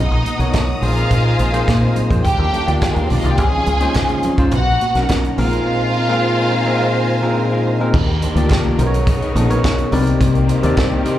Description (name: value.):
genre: disco.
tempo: 106 BPM.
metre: 4/4.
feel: straight.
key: Eb major.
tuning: A4 = 440 Hz.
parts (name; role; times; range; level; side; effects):
warm studio violin section; second line; 0.0-7.6 s; Ab3 to Ab5; -20 LUFS; equal; plate reverb, slapback echo.
clear symphonic string section; sustained chords; 0.0-11.2 s; C#3 to Eb6; -25 LUFS; right 1 dB; plate reverb.
deep dub fingered electric bass; bass; 0.0-11.0 s; A#1 to Db3; -18 LUFS; equal; none.
electric guitar at the edge of break-up; accompaniment; 0.1-11.2 s; F3 to C5; -27 LUFS; right 3 dB; plate reverb, slapback echo.
warm soul drum kit; drums; 0.3-11.2 s; crash cymbal, hi-hat, kick drum, snare drum; -20 LUFS; right 1 dB; none.
congas; percussion; 0.3-11.0 s; none; -30 LUFS; left 4 dB; none.
bell-like tine electric piano; accompaniment; 0.4-11.2 s; Bb2 to D5; -19 LUFS; left 2 dB; slapback echo.
group handclap; percussion; 4.0-10.9 s; none; -34 LUFS; right 1 dB; none.
room: moderate club reverb, RT60 0.8 s.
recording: live gig heard through the venue's PA, club reverb.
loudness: -14 LUFS.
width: side -12 dB against mid.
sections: 0.0-7.9 A section; 7.9-11.2 B section.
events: none.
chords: 0.0 Bmaj7; 0.8 Bb9sus4; 2.2 Ebmaj9; 3.4 Dbmaj9; 4.5 Bmaj7; 5.4 Bb9sus4; 7.9 Ebmaj7; 8.8 Bmaj9; 9.9 Cm7.